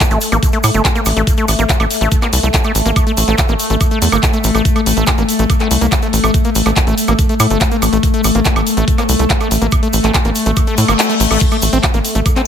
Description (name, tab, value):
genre	psychedelic trance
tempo	142 BPM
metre	4/4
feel	straight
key	A phrygian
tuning	A4 = 440 Hz
part	overtone-sweeping drone	sustained chords	0.0-12.5 s	A3	-18 LUFS	left 2 dB	chorus, built-in reverb, vintage 12-bit sampler grit, sidechain pumping
part	drum and bass drum kit	drums	0.0-12.4 s	crash cymbal, handclaps, hi-hat, woodblock	-18 LUFS	right 1 dB	none
part	electronic kick drum	drums	0.0-12.3 s	none	-15 LUFS	equal	none
part	tube shaker	percussion	0.0-12.4 s	none	-26 LUFS	right 2 dB	none
part	overdriven acid bass	riff	0.1-12.4 s	A3 to C4	-20 LUFS	moving between left 4 dB and right 3 dB	auto-pan, sidechain pumping, dub echo
part	tight sequencer bass	bass	0.1-12.2 s	G1 to A2	-15 LUFS	equal	none
part	reverse cymbal	sound effects	10.7-11.4 s	none	-21 LUFS	left 6 dB	none
room	digital ambience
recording	none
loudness	-11 LUFS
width	side -8 dB against mid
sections	0.0-12.5 A section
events	reverse cymbal 10.7-11.4; kick drops out 11.0-11.4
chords	0.0 A5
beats	0.00 0.43 0.85 | 1.27 1.69 2.12 2.54 | 2.96 3.38 3.81 4.23 | 4.65 5.07 5.50 5.92 | 6.34 6.76 7.19 7.61 | 8.03 8.46 8.88 9.30 | 9.72 10.14 10.57 10.99 | 11.41 11.84 12.26